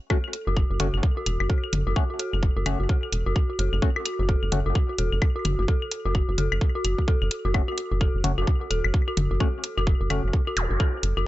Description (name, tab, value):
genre	minimal techno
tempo	129 BPM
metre	4/4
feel	swing 60% on 16ths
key	F# minor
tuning	A4 = 440 Hz
part	dark detuned synth bell	riff	0.1-11.2 s	F#4 to A4	-30 LUFS	left 1 dB	chorus, sidechain pumping, dub echo
part	percussive organ stab	stabs	0.1-4.6, 7.5-10.2 s	A3 to F#4	-32 LUFS	left 3 dB	chorus, phaser, tape echo
part	electronic kick drum	drums	0.1-10.9 s	none	-22 LUFS	equal	none
part	electronic woodblock, claves and toms	percussion	0.1-11.2 s	none	-31 LUFS	left 4 dB	tape echo
part	electronic hi-hat	drums	0.3-11.1 s	none	-29 LUFS	right 1 dB	none
part	rubbery square bass	bass	0.5-11.2 s	E1 to F#1	-25 LUFS	equal	tube saturation, sidechain pumping
part	zap	sound effects	10.6-10.7 s	none	-30 LUFS	equal	none
room	little or no reverb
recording	nothing above 7.9 kHz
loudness	-22 LUFS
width	side -16 dB against mid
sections	0.0-11.3 A section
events	none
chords	0.0 F#m